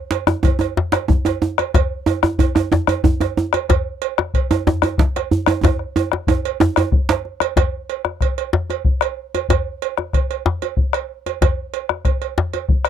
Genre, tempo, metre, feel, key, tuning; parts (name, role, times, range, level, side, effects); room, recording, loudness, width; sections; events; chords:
west african traditional, West African drum ensemble; 124 BPM (dotted quarters); 12/8; straight
cowbell; percussion; 0.1-12.9 s; -24 LUFS; right 24 dB
djembe; percussion; 0.1-7.2 s; -18 LUFS; right 4 dB
bombo; percussion; 0.3-12.9 s; -18 LUFS; left 2 dB
djembe; percussion; 0.3-12.7 s; -20 LUFS; left 4 dB
little or no reverb; dry, close 1970s-style studio recording; -17 LUFS; side -9 dB against mid
0.0-7.6 A section; 7.6-12.9 B section
drum fill 5.6-7.6